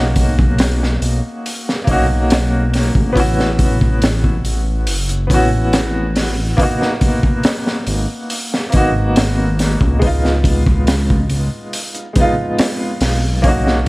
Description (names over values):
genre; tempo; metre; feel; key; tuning
trip hop; 70 BPM; 4/4; straight; unclear; A4 = 440 Hz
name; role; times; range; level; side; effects
warm upright piano; accompaniment; 0.0-13.9 s; G#3 to F#4; -19 LUFS; equal; tremolo, tape echo
dark detuned saw bass; bass; 0.0-13.9 s; F#1 to C#2; -17 LUFS; equal; none
crunchy breakbeat drum kit; drums; 0.2-13.9 s; hi-hat, kick drum, snare drum; -17 LUFS; equal; none
room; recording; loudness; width
small room ambience; vinyl crackle; -13 LUFS; side -22 dB against mid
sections
0.0-13.9 A section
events
none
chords
0.0 Bmaj7; 3.2 A6; 6.6 G#m7; 10.0 C#7